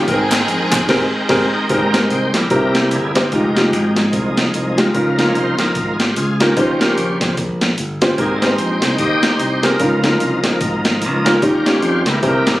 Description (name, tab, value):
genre	uptempo gospel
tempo	148 BPM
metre	4/4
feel	swing 59% on 8ths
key	Ab major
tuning	A4 = 441 Hz
part	clear symphonic string section	melody	0.0-1.3 s	C4 to Ab4	-21 LUFS	equal	none
part	warm upright piano	accompaniment	0.0-12.6 s	Ab2 to G5	-17 LUFS	equal	none
part	bright tonewheel organ	sustained chords	0.0-12.6 s	Db3 to G5	-20 LUFS	equal	slow rotary speaker, overdrive, chorus vibrato
part	modern bright fingered electric bass	bass	0.1-12.6 s	F1 to F2	-22 LUFS	equal	none
part	breakbeat sampler-style drum kit	drums	0.1-12.5 s	crash cymbal, hi-hat, kick drum, snare drum	-19 LUFS	equal	none
part	group handclap	percussion	0.3-0.8 s	none	-22 LUFS	left 1 dB	none
room	light reverb, small room ambience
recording	recorded on a phone in the room, studio reverb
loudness	-13 LUFS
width	side -16 dB against mid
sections	0.0-1.7 A section; 1.7-12.6 B section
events	band accent 0.9-1.7; tonewheel organ solo 1.7-12.6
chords	0.1 Abmaj9; 2.5 C7; 3.3 Fm9; 4.9 Db69; 6.6 Eb13; 8.2 Abmaj9; 9.8 Db69; 11.4 Eb9